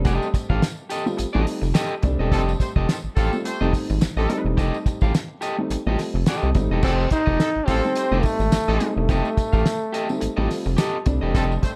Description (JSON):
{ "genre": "funk", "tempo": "106 BPM", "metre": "4/4", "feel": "swing 56% on 16ths", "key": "F mixolydian", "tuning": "A4 = 440 Hz", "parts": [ { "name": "electric guitar at the edge of break-up", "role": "accompaniment", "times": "0.0-11.7 s", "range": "G4 to F5", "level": "-31 LUFS", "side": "equal", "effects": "none" }, { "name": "dark upright piano", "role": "stabs", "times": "0.0-11.8 s", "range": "G3 to G4", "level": "-30 LUFS", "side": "equal", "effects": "none" }, { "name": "rubbery square bass", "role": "bass", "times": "0.0-11.6 s", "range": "E1 to C2", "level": "-25 LUFS", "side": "equal", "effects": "none" }, { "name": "cloth-damped thuddy drum kit", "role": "drums", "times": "0.0-11.8 s", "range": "crash cymbal, hi-hat, kick drum, snare drum", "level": "-25 LUFS", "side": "equal", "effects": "none" }, { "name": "tambourine", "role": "percussion", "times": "0.1-11.8 s", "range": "none", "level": "-44 LUFS", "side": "equal", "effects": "none" }, { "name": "clear horn section", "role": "second line", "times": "2.3-11.7 s", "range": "Eb3 to C5", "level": "-33 LUFS", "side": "equal", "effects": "none" }, { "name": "clear trombone", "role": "melody", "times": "6.8-10.7 s", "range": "Ab3 to Eb4", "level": "-26 LUFS", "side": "equal", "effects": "none" } ], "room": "light reverb, studio reverb", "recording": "dark, warm production", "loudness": "-22 LUFS", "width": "mono", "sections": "0.0-6.8 A section; 6.8-11.8 B section", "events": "upright piano fill 10.5-11.3", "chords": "0.0 F9", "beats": "| 0.06 0.62 1.19 1.75 | 2.32 2.88 3.45 4.01 | 4.58 5.14 5.71 6.27 | 6.83 7.40 7.96 8.53 | 9.09 9.65 10.22 10.78 | 11.34" }